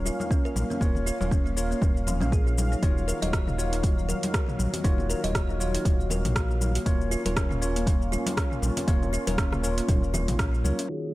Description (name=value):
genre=afro house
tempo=119 BPM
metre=4/4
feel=swing 57% on 16ths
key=unclear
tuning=A4 = 442 Hz
part: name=warm analog pad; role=sustained chords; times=0.0-11.1 s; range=Eb3 to F5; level=-35 LUFS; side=equal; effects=chorus, sidechain pumping
part: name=bright tine electric piano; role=stabs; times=0.0-11.1 s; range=Eb3 to Db5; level=-34 LUFS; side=left 1 dB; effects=fast stereo tremolo, sidechain pumping, low-pass filter, digital delay
part: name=round analog bass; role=bass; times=0.0-10.7 s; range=Eb1 to Db2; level=-28 LUFS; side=equal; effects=sidechain pumping
part: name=congas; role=percussion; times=0.0-10.8 s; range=none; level=-35 LUFS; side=left 2 dB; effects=none
part: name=kalimba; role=arpeggios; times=0.1-11.0 s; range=F3 to Eb5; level=-34 LUFS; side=equal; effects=sidechain pumping, low-pass filter, digital delay
part: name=deep house drum kit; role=drums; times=0.1-10.9 s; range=hi-hat, rim click, shaker, toms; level=-33 LUFS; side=equal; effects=low-pass filter on perc, low-pass filter on hats, low-pass filter on snare, low-pass filter on toms
part: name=electronic kick drum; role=drums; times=0.3-10.5 s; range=none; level=-25 LUFS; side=equal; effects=none
part: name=breathy large pan pipes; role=melody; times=10.9-11.1 s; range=Ab4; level=-35 LUFS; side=right 1 dB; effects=vintage 12-bit sampler grit
room=light reverb, digital ambience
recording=low-pass filter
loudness=-23 LUFS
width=side -18 dB against mid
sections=0.0-10.9 A section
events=none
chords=0.0 Bbm/Eb; 2.8 Ebm7; 6.9 Bbm/Eb